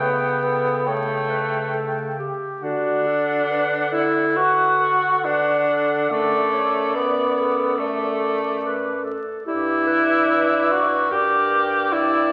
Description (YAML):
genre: classical, lyrical piece for single-reed quartet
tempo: 67-74 BPM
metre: 4/4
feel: rubato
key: D major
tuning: A4 = 440 Hz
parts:
  - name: mellow clarinet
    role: melody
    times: 0.0-12.3 s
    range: F#4 to D5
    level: -30 LUFS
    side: equal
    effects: none
  - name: clear alto saxophone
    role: second line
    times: 0.0-12.3 s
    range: D5 to G5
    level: -29 LUFS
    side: equal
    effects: none
  - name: warm tenor saxophone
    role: accompaniment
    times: 0.0-12.3 s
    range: A3 to G4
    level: -22 LUFS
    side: equal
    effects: none
  - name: dark bass clarinet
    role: bass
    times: 0.0-12.3 s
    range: F#2 to D3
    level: -32 LUFS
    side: equal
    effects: none
room: wet scoring stage reverb, RT60 1.9 s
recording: very old 78 rpm record, vinyl crackle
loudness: -21 LUFS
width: mono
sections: 0.0-12.3 A section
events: none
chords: 0.0 A7/C#; 2.6 D; 6.1 D/F#; 9.5 Em7/G